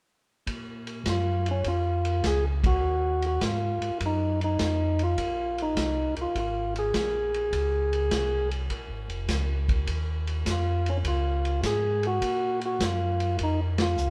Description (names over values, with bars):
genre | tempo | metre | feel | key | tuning
soul jazz organ trio | 102 BPM | 4/4 | swing 68% on 8ths | Bb minor | A4 = 439 Hz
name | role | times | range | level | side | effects
mellow tonewheel organ | bass | 0.5-14.1 s | F1 to Bb2 | -31 LUFS | equal | slow rotary speaker
vintage drum kit | drums | 0.5-14.1 s | hi-hat, kick drum, ride cymbal, snare drum | -35 LUFS | equal | none
percussive tonewheel organ | melody | 1.1-14.1 s | Db4 to Ab4 | -30 LUFS | equal | stopped rotary speaker
room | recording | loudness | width
moderate stone room reverb, RT60 1.1 s | band playing live in one room | -27 LUFS | mono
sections
0.5-14.1 A section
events
band accent 2.5, 13.7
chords
0.5 Bbm; 2.8 Ebmadd9; 5.2 Bbm9; 9.9 Ebm9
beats
| 0.47 1.06 1.65 2.23 | 2.82 3.41 4.00 4.59 | 5.17 5.76 6.35 6.94 | 7.53 8.11 8.70 9.29 | 9.88 10.46 11.05 11.64 | 12.22 12.81 13.40 13.98